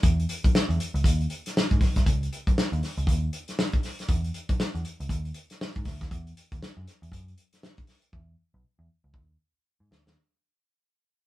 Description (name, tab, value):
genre	funk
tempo	118 BPM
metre	4/4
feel	swing 60% on 16ths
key	unclear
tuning	A4 = 440 Hz
part	vintage muted picked electric bass	bass	0.0-10.1 s	B1 to G#2	-29 LUFS	equal	none
part	warm soul drum kit	drums	0.0-10.2 s	hi-hat, kick drum, snare drum	-25 LUFS	equal	none
room	moderate studio reverb, RT60 0.5 s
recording	band playing live in one room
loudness	-24 LUFS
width	side -16 dB against mid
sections	0.0-10.2 A section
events	fade-out 0.0-10.2; drum fill 8.1-10.2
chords	none